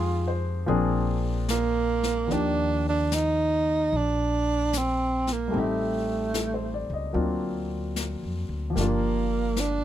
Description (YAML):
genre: jazz ballad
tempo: 74 BPM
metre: 4/4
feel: swing 68% on 8ths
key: Eb major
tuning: A4 = 440 Hz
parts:
  - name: breathy tenor saxophone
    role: melody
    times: 0.0-9.8 s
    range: A3 to F4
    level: -26 LUFS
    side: right 3 dB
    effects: none
  - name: warm grand piano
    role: accompaniment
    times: 0.0-9.8 s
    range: Eb3 to Eb5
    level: -29 LUFS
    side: left 3 dB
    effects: none
  - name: upright bass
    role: bass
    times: 0.0-9.8 s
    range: G1 to F2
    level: -29 LUFS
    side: left 1 dB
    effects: none
  - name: jazz brush drum kit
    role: drums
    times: 0.7-9.8 s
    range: brushed snare drum, hi-hat, snare drum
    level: -36 LUFS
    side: left 5 dB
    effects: none
room: little or no reverb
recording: close, detailed microphones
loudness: -24 LUFS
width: side -11 dB against mid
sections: 0.0-2.3 A section; 2.3-9.8 B section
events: tenor saxophone solo 0.0-2.3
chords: 0.0 Fm7; 0.7 Bb7; 2.3 Ebmaj9; 5.5 Am7b5; 7.1 D7alt; 8.8 Gm7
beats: 0.68 1.49 | 2.30 3.11 3.92 4.73 | 5.54 6.34 7.15 7.95 | 8.76 9.56